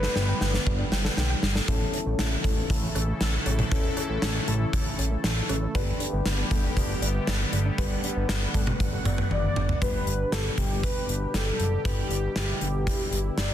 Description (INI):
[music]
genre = synth-pop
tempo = 118 BPM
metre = 4/4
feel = straight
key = unclear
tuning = A4 = 440 Hz
[part]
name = mellow horn-like synth lead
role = melody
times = 0.0-1.4, 9.3-13.5 s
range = G4 to D5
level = -32 LUFS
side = left 1 dB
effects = chorus, ping-pong delay
[part]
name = soft electric-piano-like synth keys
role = accompaniment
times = 0.0-13.5 s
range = C#4 to B4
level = -36 LUFS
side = left 3 dB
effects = chorus, phaser
[part]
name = sweeping resonant pad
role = sustained chords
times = 0.0-13.5 s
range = B2 to F#5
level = -34 LUFS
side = equal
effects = chorus
[part]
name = soft round pluck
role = arpeggios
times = 0.0-9.8 s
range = E3 to G5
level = -38 LUFS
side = right 4 dB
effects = chorus, ping-pong delay
[part]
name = fat analog bass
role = bass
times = 0.0-13.5 s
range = F#1 to B1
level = -28 LUFS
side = equal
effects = none
[part]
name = gated 80s drum kit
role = drums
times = 0.0-13.5 s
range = cowbell, hi-hat, kick drum, snare drum, toms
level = -27 LUFS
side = equal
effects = none
[sound]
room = light reverb, small room ambience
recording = dense, heavily limited modern master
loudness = -24 LUFS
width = side -11 dB against mid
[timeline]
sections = 0.0-1.7 A section; 1.7-9.8 B section; 9.8-13.5 C section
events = drum fill 0.0-1.7, 9.3-9.8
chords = 0.0 Gadd9; 1.7 A; 5.8 Gadd9; 9.8 G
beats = 0.16 0.67 1.17 | 1.68 2.19 2.70 3.21 | 3.72 4.22 4.73 5.24 | 5.75 6.26 6.77 7.28 | 7.78 8.29 8.80 9.31 | 9.82 10.33 10.84 11.34 | 11.85 12.36 12.87 13.38